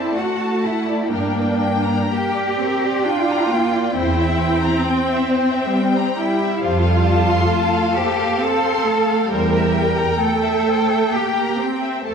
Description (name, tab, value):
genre	classical, slow romantic movement for string orchestra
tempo	57-69 BPM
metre	3/4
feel	rubato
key	unclear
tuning	A4 = 441 Hz
part	dark studio violin section	melody	0.0-12.1 s	F5 to A5	-26 LUFS	left 8 dB	none
part	clear studio violin section	second line	0.0-12.1 s	A4 to C6	-26 LUFS	left 3 dB	none
part	rich studio viola section	accompaniment	0.0-12.1 s	G3 to D4	-22 LUFS	equal	none
part	warm studio cello section	bass	0.0-12.1 s	C4 to Bb4	-20 LUFS	right 2 dB	none
part	warm studio double bass section	bass	1.1-12.1 s	E2 to G2	-22 LUFS	right 2 dB	none
room	moderate scoring stage reverb, RT60 2.0 s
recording	dark, warm production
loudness	-16 LUFS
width	side -6 dB against mid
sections	0.0-12.1 A section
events	none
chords	0.0 D7; 1.1 Gm; 4.0 C/E; 6.6 F; 9.3 C7/E